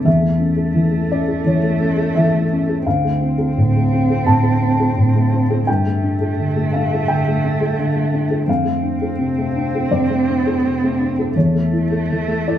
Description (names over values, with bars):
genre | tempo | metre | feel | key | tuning
neoclassical piano and strings | 85 BPM | 4/4 | rubato | D minor | A4 = 440 Hz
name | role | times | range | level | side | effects
felt-muted upright piano | accompaniment | 0.0-12.6 s | D2 to A5 | -16 LUFS | left 1 dB | none
warm cello | second line | 0.1-12.6 s | A3 to C4 | -23 LUFS | right 3 dB | none
room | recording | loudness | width
wet large studio reverb, RT60 0.9 s | band playing live in one room | -15 LUFS | side -10 dB against mid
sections
0.0-12.6 A section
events
none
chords
0.1 A/E; 2.9 Dm7; 5.7 Gsus2; 8.5 Dm7/F; 11.3 A/E